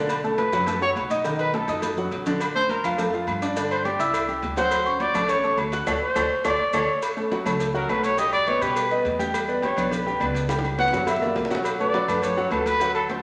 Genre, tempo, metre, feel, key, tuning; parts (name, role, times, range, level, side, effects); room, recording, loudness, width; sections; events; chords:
Afro-Cuban jazz; 208 BPM; 4/4; straight; A4 = 440 Hz
warm grand piano; accompaniment; 0.0-13.2 s; D3 to F#6; -28 LUFS; equal
upright bass; bass; 0.0-13.2 s; A1 to B2; -37 LUFS; equal
agogo bells and timbales; percussion; 0.1-13.1 s; -35 LUFS; equal
congas; percussion; 0.1-13.2 s; -37 LUFS; equal
cowbell and bongos; percussion; 0.1-13.2 s; -37 LUFS; equal
maracas; percussion; 0.1-13.2 s; -45 LUFS; equal
dark trumpet; melody; 0.4-13.1 s; A4 to F#5; -27 LUFS; equal
claves; percussion; 2.4-13.1 s; -37 LUFS; equal
wet large studio reverb, RT60 1.2 s; -24 LUFS; mono
0.0-7.0 A section; 7.0-13.2 A section
trumpet solo 0.0-13.2; drum fill 1.7-2.4, 6.5-7.0, 10.5-11.7; band accent 5.9-7.0
0.1 Bm7; 1.3 B7; 2.4 Bbmaj7; 3.6 G5; 4.1 Cadd9; 4.7 Dmaj7; 7.0 F#m; 8.2 Baug; 9.3 Em7; 10.5 Gmaj7#11/C#; 11.1 F#aug7; 11.7 Bm9